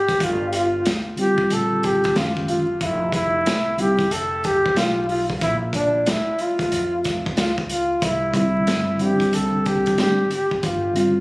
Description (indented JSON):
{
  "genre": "hip hop, jazz-hop",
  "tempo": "92 BPM",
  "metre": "4/4",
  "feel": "swing 64% on 16ths",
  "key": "G dorian",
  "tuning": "A4 = 440 Hz",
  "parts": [
    { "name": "breathy flugelhorn", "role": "melody", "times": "0.0-11.2 s", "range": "D4 to A4", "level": "-20 LUFS", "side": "equal", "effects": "tape echo" },
    { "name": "upright bass", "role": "bass", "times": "0.0-11.2 s", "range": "F1 to F2", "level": "-30 LUFS", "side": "equal", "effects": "none" },
    { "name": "crunchy breakbeat drum kit", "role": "drums", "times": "0.1-11.2 s", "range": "hi-hat, kick drum, snare drum", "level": "-25 LUFS", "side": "equal", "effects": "none" },
    { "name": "mellow tine electric piano", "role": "accompaniment", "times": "1.2-4.1, 8.3-11.2 s", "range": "D3 to F4", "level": "-21 LUFS", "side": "equal", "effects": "fast stereo tremolo" }
  ],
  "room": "light reverb, studio ambience",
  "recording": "recorded on a phone in the room, studio reverb, vinyl crackle",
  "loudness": "-18 LUFS",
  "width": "side -23 dB against mid",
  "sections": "0.0-11.2 A section",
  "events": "none",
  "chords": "0.2 Gm7; 2.2 F#sus2; 2.8 Fsus2; 5.4 Bb; 8.0 Cadd9; 10.6 G7(no3)"
}